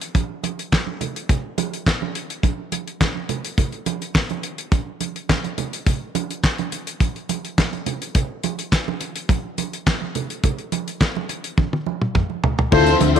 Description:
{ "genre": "early-eighties boogie funk", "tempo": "105 BPM", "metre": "4/4", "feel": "straight", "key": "D minor", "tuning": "A4 = 440 Hz", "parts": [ { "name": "damped 70s drum kit", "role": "drums", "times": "0.0-13.2 s", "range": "crash cymbal, handclaps, hi-hat, kick drum, snare drum, toms", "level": "-21 LUFS", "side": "left 1 dB", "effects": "none" }, { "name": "congas", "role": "percussion", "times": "0.1-13.1 s", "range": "none", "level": "-27 LUFS", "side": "right 11 dB", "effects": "none" }, { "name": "clear horn section", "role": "second line", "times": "12.7-13.2 s", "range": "F4 to C5", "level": "-18 LUFS", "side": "equal", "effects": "none" }, { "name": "FM electric piano with tremolo", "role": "accompaniment", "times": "12.7-13.2 s", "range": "E4 to D5", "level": "-18 LUFS", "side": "left 14 dB", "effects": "none" }, { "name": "string machine, violins", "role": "sustained chords", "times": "12.7-13.2 s", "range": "D3 to E5", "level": "-20 LUFS", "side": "left 1 dB", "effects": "ensemble chorus" }, { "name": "slap-like FM bass", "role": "bass", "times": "12.7-13.2 s", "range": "D2", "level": "-18 LUFS", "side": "left 1 dB", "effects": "none" } ], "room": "light reverb, small room reverb", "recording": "1960s-style stereo with parts hard left and right", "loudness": "-20 LUFS", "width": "side -8 dB against mid", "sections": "0.0-12.7 A section", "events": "drum fill 11.6-12.7", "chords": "none" }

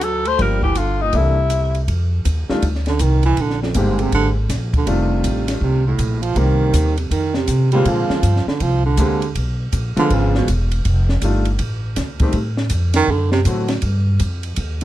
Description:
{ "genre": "jazz, small-group swing and bop", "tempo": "161 BPM", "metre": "4/4", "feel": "swing 64% on 8ths", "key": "F mixolydian", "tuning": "A4 = 440 Hz", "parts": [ { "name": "growling tenor saxophone", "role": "melody", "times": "0.0-1.8 s", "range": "Eb4 to C5", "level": "-20 LUFS", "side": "left 5 dB", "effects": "none" }, { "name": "warm baritone saxophone", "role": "second line", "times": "0.0-10.5, 13.0-13.4 s", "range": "F2 to A3", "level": "-21 LUFS", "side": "right 5 dB", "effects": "none" }, { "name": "upright bass", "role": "bass", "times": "0.0-14.8 s", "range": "E1 to C3", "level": "-18 LUFS", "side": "equal", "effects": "none" }, { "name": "compact cocktail drum kit", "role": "drums", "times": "0.0-14.8 s", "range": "hi-hat, kick drum, ride cymbal, snare drum", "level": "-25 LUFS", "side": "equal", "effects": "none" }, { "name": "clear baby grand piano", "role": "accompaniment", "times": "0.4-14.8 s", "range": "D3 to A4", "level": "-22 LUFS", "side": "left 2 dB", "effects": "none" } ], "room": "little or no reverb", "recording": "close, detailed microphones", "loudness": "-16 LUFS", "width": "side -14 dB against mid", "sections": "0.0-1.9 A section; 1.9-14.8 B section", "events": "baritone saxophone solo 1.9-14.8", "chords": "0.4 Gm7; 1.1 C13; 1.9 F7(no3); 3.4 Bb13; 4.9 F13; 6.4 Cm7; 7.1 F5; 7.9 Bb13; 9.4 Bdim7; 10.8 F13; 12.3 F; 13.1 D7; 13.8 G7(no3)" }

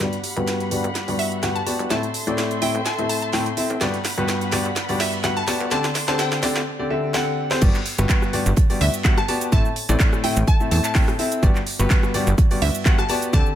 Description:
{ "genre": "piano house", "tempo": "126 BPM", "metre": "4/4", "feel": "swing 54% on 16ths", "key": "G major", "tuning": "A4 = 436 Hz", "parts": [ { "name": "muted chamber string section", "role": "sustained chords", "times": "0.0-6.7 s", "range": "G3 to C6", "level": "-31 LUFS", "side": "left 1 dB", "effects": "sidechain pumping" }, { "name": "clear concert grand piano", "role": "riff", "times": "0.0-13.5 s", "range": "G2 to G5", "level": "-23 LUFS", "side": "left 1 dB", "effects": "sidechain pumping, low-pass filter, tape echo" }, { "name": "plucky analog bass", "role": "bass", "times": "0.0-13.4 s", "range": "D1 to E2", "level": "-22 LUFS", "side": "right 1 dB", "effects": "sidechain pumping, high-pass filter" }, { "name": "deep reggae drum kit", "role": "drums", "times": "0.0-13.5 s", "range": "hi-hat, snare drum", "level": "-36 LUFS", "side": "right 5 dB", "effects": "none" }, { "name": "house drum kit", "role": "drums", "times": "0.0-13.5 s", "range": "crash cymbal, handclaps, hi-hat, rim click, shaker, snare drum", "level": "-26 LUFS", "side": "right 1 dB", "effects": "high-pass filter on perc, high-pass filter on snare, high-pass filter on hats, high-pass filter on cymbals" }, { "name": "glassy wavetable pluck", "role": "melody", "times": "1.2-13.5 s", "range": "E5 to A5", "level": "-27 LUFS", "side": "equal", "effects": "chorus" }, { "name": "electronic kick drum", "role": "drums", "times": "7.6-13.4 s", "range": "none", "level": "-17 LUFS", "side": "right 1 dB", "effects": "none" } ], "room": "light reverb, small room ambience", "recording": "none", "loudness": "-18 LUFS", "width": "side -11 dB against mid", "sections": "0.0-7.6 A section; 7.6-13.6 B section", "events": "build-up 0.0-7.6; drum fill 0.0-6.7, 7.1-7.6; filter sweep on grand piano 0.0-7.6; drop 7.6-13.6", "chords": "0.0 Gmaj7; 1.9 Am; 3.8 Gmaj7; 5.7 D7sus4; 7.6 Gmaj7; 9.5 Am; 11.4 Gmaj7" }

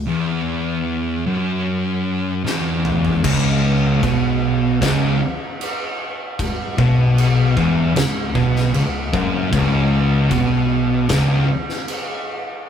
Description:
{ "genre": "stoner and doom metal", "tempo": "76 BPM", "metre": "4/4", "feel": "straight", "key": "C# minor", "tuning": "A4 = 440 Hz", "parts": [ { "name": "overdriven fingered electric bass", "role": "bass", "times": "0.0-11.5 s", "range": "C#1 to B1", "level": "-28 LUFS", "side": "left 1 dB", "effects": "none" }, { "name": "thick fuzz guitar", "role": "riff", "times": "0.1-11.5 s", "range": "C#2 to B2", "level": "-23 LUFS", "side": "left 6 dB", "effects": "distortion" }, { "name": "thick fuzz guitar", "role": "riff", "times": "0.1-11.5 s", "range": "C#2 to B2", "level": "-18 LUFS", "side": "right 2 dB", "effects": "distortion" }, { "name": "oversized low-tuned drum kit", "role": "drums", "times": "2.5-12.1 s", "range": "crash cymbal, kick drum, snare drum, toms", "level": "-23 LUFS", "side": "left 1 dB", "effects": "none" }, { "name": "overdriven electric guitar", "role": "riff", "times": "3.2-11.5 s", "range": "C#2 to B2", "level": "-23 LUFS", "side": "left 2 dB", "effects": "none" } ], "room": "light reverb", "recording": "rough rehearsal-room recording", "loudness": "-16 LUFS", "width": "side -8 dB against mid", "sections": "0.0-3.2 A section; 3.2-12.7 B section", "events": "drum fill 2.5-3.2", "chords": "0.0 N.C.; 3.2 C#m" }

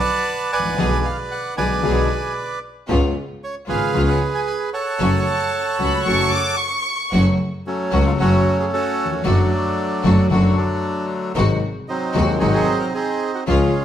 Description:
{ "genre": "tango", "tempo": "114 BPM", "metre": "4/4", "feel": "rubato", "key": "F# harmonic minor", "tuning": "A4 = 441 Hz", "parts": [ { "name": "bandoneon", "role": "melody", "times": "0.0-13.8 s", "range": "D3 to A5", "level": "-21 LUFS", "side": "right 2 dB", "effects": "none" }, { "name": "clear double bass", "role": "bass", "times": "0.5-13.7 s", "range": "F#1 to D#2", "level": "-21 LUFS", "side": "equal", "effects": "none" }, { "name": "dark grand piano", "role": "accompaniment", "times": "0.6-13.7 s", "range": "D#1 to G#4", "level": "-22 LUFS", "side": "left 2 dB", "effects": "none" }, { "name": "clear symphonic string section", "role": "stabs", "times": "0.8-13.7 s", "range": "G#3 to G#4", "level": "-28 LUFS", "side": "left 2 dB", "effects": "none" }, { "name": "warm chamber violin section", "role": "second line", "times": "5.3-7.1 s", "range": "A5 to D6", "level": "-22 LUFS", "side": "left 1 dB", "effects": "none" } ], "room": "wet stone room reverb, RT60 1.2 s", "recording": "band playing live in one room", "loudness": "-17 LUFS", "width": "side -10 dB against mid", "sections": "0.0-7.1 A section; 7.1-13.8 B section", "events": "none", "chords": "0.0 Bm; 0.8 G#dim/B; 2.9 C#7; 5.0 F#m; 9.3 D/F#; 11.4 G#7" }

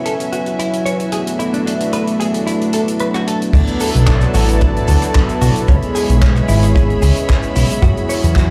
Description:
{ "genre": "nu-disco, nu disco", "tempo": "112 BPM", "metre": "4/4", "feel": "straight", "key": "unclear", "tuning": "A4 = 440 Hz", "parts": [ { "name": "warm analog pad", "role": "accompaniment", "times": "0.0-8.5 s", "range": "F#3 to G#5", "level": "-21 LUFS", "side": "equal", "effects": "chorus, slapback echo" }, { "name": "warm chamber violin section", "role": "sustained chords", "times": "0.0-8.5 s", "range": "A3 to B5", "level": "-27 LUFS", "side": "equal", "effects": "sidechain pumping" }, { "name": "direct-recorded clean electric guitar", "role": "riff", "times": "0.1-8.4 s", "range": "C#4 to C#5", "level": "-27 LUFS", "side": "equal", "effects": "lush chorus, slapback echo" }, { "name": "tight funk drum kit", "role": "drums", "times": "0.1-8.5 s", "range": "crash cymbal, handclaps, hi-hat, rim click, shaker", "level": "-28 LUFS", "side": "equal", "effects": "small room reverb" }, { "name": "fat analog bass", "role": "bass", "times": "3.5-8.5 s", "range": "G#1 to F#2", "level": "-15 LUFS", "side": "equal", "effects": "none" }, { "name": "kick drum", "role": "drums", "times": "3.5-8.5 s", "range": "none", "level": "-17 LUFS", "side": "equal", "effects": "small room reverb" }, { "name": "cabasa", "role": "percussion", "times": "3.5-8.5 s", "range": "none", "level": "-40 LUFS", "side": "equal", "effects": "none" } ], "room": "light reverb, studio reverb", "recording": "played on a big sound system in a bare room, large studio reverb", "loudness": "-15 LUFS", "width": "mono", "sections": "0.0-3.5 A section; 3.5-8.5 B section", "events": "filter sweep on clean electric guitar 0.0-3.5; drop 3.5-8.5", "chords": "0.0 F#7sus4; 1.1 E9sus4; 3.5 D6; 5.7 C#m7; 7.8 F#7sus4" }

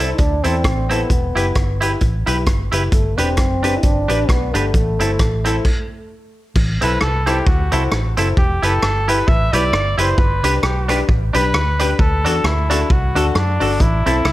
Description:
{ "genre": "ska", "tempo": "132 BPM", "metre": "4/4", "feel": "swing 57% on 8ths", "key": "A dorian", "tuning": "A4 = 440 Hz", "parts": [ { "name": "mellow trombone", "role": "melody", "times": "0.0-6.1 s", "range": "A3 to E4", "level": "-23 LUFS", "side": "equal", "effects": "dub echo" }, { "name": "semi-hollow electric guitar", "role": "accompaniment", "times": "0.0-14.3 s", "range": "C4 to B4", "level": "-23 LUFS", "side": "right 3 dB", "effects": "none" }, { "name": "warm upright piano", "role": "stabs", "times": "0.0-14.2 s", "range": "C4 to C5", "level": "-24 LUFS", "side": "left 4 dB", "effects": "none" }, { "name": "vintage muted fingered electric bass", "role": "bass", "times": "0.0-14.3 s", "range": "E1 to F#2", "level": "-20 LUFS", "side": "equal", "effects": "none" }, { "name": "vintage drum kit", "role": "drums", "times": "0.2-14.3 s", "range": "crash cymbal, hi-hat, kick drum, rim click", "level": "-19 LUFS", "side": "equal", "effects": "none" }, { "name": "warm trumpet", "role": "melody", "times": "6.8-14.3 s", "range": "D4 to E5", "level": "-21 LUFS", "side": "equal", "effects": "dub echo" } ], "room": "light reverb", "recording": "none", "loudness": "-14 LUFS", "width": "side -16 dB against mid", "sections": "0.0-6.6 A section; 6.6-14.3 B section", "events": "stop 5.7-6.6; trumpet solo 6.6-14.3", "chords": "0.0 Am; 1.1 Em; 2.9 G; 4.7 Am; 8.4 Em; 10.2 G; 12.0 D; 13.8 Am" }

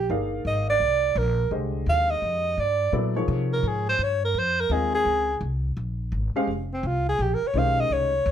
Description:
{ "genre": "modal jazz", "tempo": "169 BPM", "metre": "4/4", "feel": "swing 64% on 8ths", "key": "unclear", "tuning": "A4 = 442 Hz", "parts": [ { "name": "breathy alto saxophone", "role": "melody", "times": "0.0-8.3 s", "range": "C4 to F5", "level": "-23 LUFS", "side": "right 2 dB", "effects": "none" }, { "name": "upright bass", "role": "bass", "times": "0.0-8.3 s", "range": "F1 to C3", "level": "-27 LUFS", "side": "left 1 dB", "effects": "none" }, { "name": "warm upright piano", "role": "accompaniment", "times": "0.1-8.1 s", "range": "D3 to F5", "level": "-29 LUFS", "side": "left 2 dB", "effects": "none" } ], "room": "moderate club reverb, RT60 0.7 s", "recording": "none", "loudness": "-22 LUFS", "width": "side -9 dB against mid", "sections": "0.0-8.3 A section", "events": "alto saxophone solo 0.0-8.3", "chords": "0.0 Cm9; 2.9 Bbm9" }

